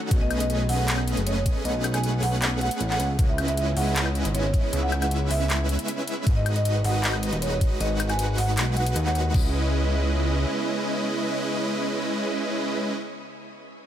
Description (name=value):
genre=future bass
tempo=156 BPM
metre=4/4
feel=half-time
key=C# minor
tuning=A4 = 440 Hz
part: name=airy breathy pad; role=sustained chords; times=0.0-12.9 s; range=C#3 to D#5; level=-37 LUFS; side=equal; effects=chorus, sidechain pumping
part: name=supersaw chords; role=riff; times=0.0-12.9 s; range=G#3 to F#5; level=-28 LUFS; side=right 1 dB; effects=sidechain pumping, digital delay
part: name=fat analog bass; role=bass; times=0.1-10.5 s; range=D#1 to D#2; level=-25 LUFS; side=equal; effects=sidechain pumping
part: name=electronic kick drum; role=drums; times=0.1-9.4 s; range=none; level=-22 LUFS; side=equal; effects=none
part: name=trap drum kit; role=drums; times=0.1-9.4 s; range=crash cymbal, handclaps, hi-hat, woodblock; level=-31 LUFS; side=left 2 dB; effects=none
part: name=marimba with medium mallets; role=melody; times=0.2-9.2 s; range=C#5 to G#5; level=-31 LUFS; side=right 1 dB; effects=sidechain pumping, digital delay
room=digital ambience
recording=none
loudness=-22 LUFS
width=side -10 dB against mid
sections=0.0-9.3 A section; 9.3-12.4 B section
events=drop 0.0-9.3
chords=0.1 B13; 3.0 C#m9; 6.3 G#m7; 9.3 C#m9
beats=| 0.11 0.50 0.88 1.27 | 1.65 2.04 2.42 2.81 | 3.19 3.58 3.96 4.34 | 4.73 5.11 5.50 5.88 | 6.27 6.65 7.04 7.42 | 7.81 8.19 8.57 8.96 | 9.34 9.73 10.11 10.50 | 10.88 11.27 11.65 12.04